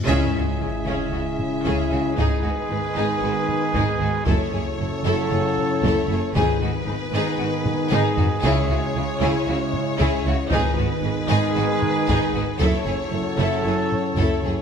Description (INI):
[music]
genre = cinematic, epic orchestral film score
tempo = 115 BPM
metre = 4/4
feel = straight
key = C# minor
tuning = A4 = 440 Hz
[part]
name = timpani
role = percussion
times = 0.0-0.8, 6.4-11.3 s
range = G#2 to C#3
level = -31 LUFS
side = left 1 dB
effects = none
[part]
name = cymbal swell and sub drop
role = sound effects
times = 0.0-2.2 s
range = none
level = -33 LUFS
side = left 1 dB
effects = none
[part]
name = rich symphonic violin section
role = melody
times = 0.1-14.6 s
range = B4 to E5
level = -30 LUFS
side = left 4 dB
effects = none
[part]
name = rich symphonic violin section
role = second line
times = 0.1-14.5 s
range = F#4 to A4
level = -29 LUFS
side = left 3 dB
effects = none
[part]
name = rich symphonic viola section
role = accompaniment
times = 0.1-14.5 s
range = C#4 to E4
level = -30 LUFS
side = equal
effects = none
[part]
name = mellow French horn section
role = sustained chords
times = 0.1-14.6 s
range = B3 to E4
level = -29 LUFS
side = left 6 dB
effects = none
[part]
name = warm trombone section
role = sustained chords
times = 0.1-14.6 s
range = C#3 to G#3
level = -29 LUFS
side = right 5 dB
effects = none
[part]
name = mellow trumpet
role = stabs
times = 0.1-14.6 s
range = G#4 to A4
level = -28 LUFS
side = right 1 dB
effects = none
[part]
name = rich symphonic cello section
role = bass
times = 0.1-14.5 s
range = F#2 to C#3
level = -28 LUFS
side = right 3 dB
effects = none
[part]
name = warm symphonic double bass section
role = bass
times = 0.1-14.5 s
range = F#1 to C#2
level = -27 LUFS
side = right 4 dB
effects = none
[part]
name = taiko ensemble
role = drums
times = 0.1-14.6 s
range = none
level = -27 LUFS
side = equal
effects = none
[sound]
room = moderate scoring stage reverb, RT60 2.0 s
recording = none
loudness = -19 LUFS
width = side -7 dB against mid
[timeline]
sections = 0.1-14.6 A section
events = band accent 0.1-0.6; impact 0.1-2.2; drum fill 7.7-8.4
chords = 0.1 C#m; 2.2 G#m; 4.3 F#m7; 6.4 G#m; 8.4 C#m; 10.5 G#m; 12.6 F#m7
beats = | 0.07 0.60 1.12 1.65 | 2.17 2.69 3.22 3.74 | 4.26 4.79 5.31 5.83 | 6.35 6.87 7.39 7.91 | 8.43 8.95 9.47 9.99 | 10.51 11.04 11.56 12.09 | 12.61 13.13 13.66 14.18